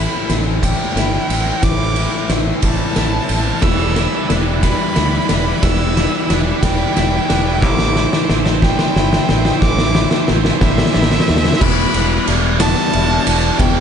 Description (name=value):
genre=post-rock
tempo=60 BPM (dotted quarters)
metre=6/8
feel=straight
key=E minor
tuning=A4 = 440 Hz
part: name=clear violin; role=melody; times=0.0-13.8 s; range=E5 to E6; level=-22 LUFS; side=right 1 dB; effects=analog delay
part: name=shimmering ambient pad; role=sustained chords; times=0.2-13.8 s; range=E3 to G5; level=-31 LUFS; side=right 2 dB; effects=none
part: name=twangy electric guitar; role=arpeggios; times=0.0-13.8 s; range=E2 to E4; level=-25 LUFS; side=left 2 dB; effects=analog delay
part: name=thick fuzz guitar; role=riff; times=0.0-13.8 s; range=A2 to E4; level=-22 LUFS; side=left 10 dB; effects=distortion
part: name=modern bright fingered electric bass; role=bass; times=0.0-13.8 s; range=E1 to D#2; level=-19 LUFS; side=right 1 dB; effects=none
part: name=oversized low-tuned drum kit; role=drums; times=0.3-13.8 s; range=crash cymbal, kick drum, ride cymbal, snare drum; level=-17 LUFS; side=equal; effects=none
part: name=tight distorted guitar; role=riff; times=3.6-13.8 s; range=E2 to C5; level=-25 LUFS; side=right 16 dB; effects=distortion
room=small room reverb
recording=dark, warm production, nothing above 10.4 kHz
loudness=-13 LUFS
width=side -8 dB against mid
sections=0.0-11.6 A section; 11.6-13.8 B section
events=build-up 0.0-11.6; drum fill 0.0-11.6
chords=0.0 Am7; 3.6 Em7; 7.6 Am7; 11.6 Em7